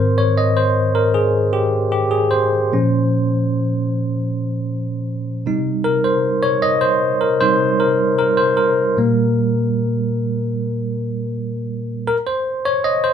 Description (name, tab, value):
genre	pop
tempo	77 BPM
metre	4/4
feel	straight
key	Ab major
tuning	A4 = 440 Hz
part	bell-like tine electric piano	solo	0.0-13.1 s	Ab2 to Eb5	-16 LUFS	equal	medium stereo tremolo
room	wet studio ambience, RT60 0.5 s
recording	band playing live in one room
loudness	-16 LUFS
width	side -8 dB against mid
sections	0.0-13.1 A section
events	tine electric piano solo 0.0-13.1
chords	0.0 Ab; 2.7 Bbmadd9; 5.5 Cm; 9.0 Gm/Bb; 12.1 Ab (rootless)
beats	0.40 1.18 1.95 | 2.73 3.51 4.29 5.07 | 5.85 6.63 7.41 8.19 | 8.97 9.75 10.53 11.30 | 12.08 12.86